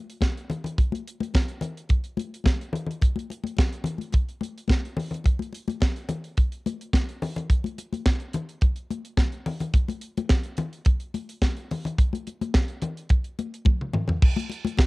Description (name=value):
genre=disco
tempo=107 BPM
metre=4/4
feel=straight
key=none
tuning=none
part: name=tight funk drum kit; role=drums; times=0.1-14.9 s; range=crash cymbal, hi-hat, kick drum, snare drum, toms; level=-20 LUFS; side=equal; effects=cassette tape
part: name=congas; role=percussion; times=0.2-14.9 s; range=none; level=-30 LUFS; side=left 4 dB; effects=none
room=small room ambience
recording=home recording on cassette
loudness=-24 LUFS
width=side -21 dB against mid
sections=0.0-14.2 A section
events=drum fill 13.7-14.2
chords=none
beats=0.23 | 0.79 1.34 1.90 2.46 | 3.02 3.58 4.14 4.70 | 5.26 5.82 6.38 6.94 | 7.50 8.06 8.62 9.18 | 9.74 10.30 10.86 11.42 | 11.98 12.54 13.10 13.66 | 14.22 14.78